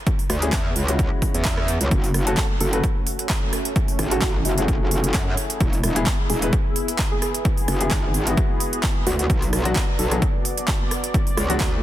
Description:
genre	bass house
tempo	130 BPM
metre	4/4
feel	swing 54% on 16ths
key	F# minor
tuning	A4 = 440 Hz
part	big-room dance drum kit	drums	0.1-11.7 s	handclaps, hi-hat, rim click	-27 LUFS	right 2 dB	none
part	electronic kick drum	drums	0.1-11.7 s	none	-22 LUFS	equal	overdrive
part	metallic wobble bass	bass	0.3-11.8 s	E1 to F#2	-22 LUFS	equal	distortion, chorus, tube saturation, sidechain pumping
part	warm grand piano	stabs	0.4-11.6 s	F#3 to B4	-29 LUFS	left 3 dB	sidechain pumping, ping-pong delay
part	sweeping resonant pad	sustained chords	1.9-11.8 s	A3 to D5	-30 LUFS	equal	chorus, sidechain pumping
part	soft struck synth lead	melody	2.6-11.7 s	E4 to A4	-30 LUFS	equal	chorus, phaser, ping-pong delay
room	light reverb, digital ambience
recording	dense, heavily limited modern master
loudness	-19 LUFS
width	side -13 dB against mid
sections	0.0-11.8 A section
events	none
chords	0.0 C#m; 1.9 F#m; 5.6 E; 9.3 Bm

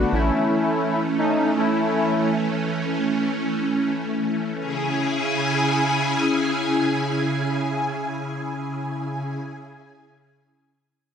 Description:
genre	pop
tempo	free time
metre	none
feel	none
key	C# minor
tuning	A4 = 440 Hz
part	analog synth brass	accompaniment	0.0-2.3 s	A3 to F#4	-21 LUFS	left 1 dB	chorus
part	string machine, violas	sustained chords	0.0-9.3 s	C#3 to G#5	-22 LUFS	equal	phaser, ensemble chorus
room	wet spring reverb, RT60 1.2 s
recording	none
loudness	-20 LUFS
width	side -7 dB against mid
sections	0.0-4.6 A section; 4.6-8.8 B section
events	none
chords	0.1 A; 4.6 C#m

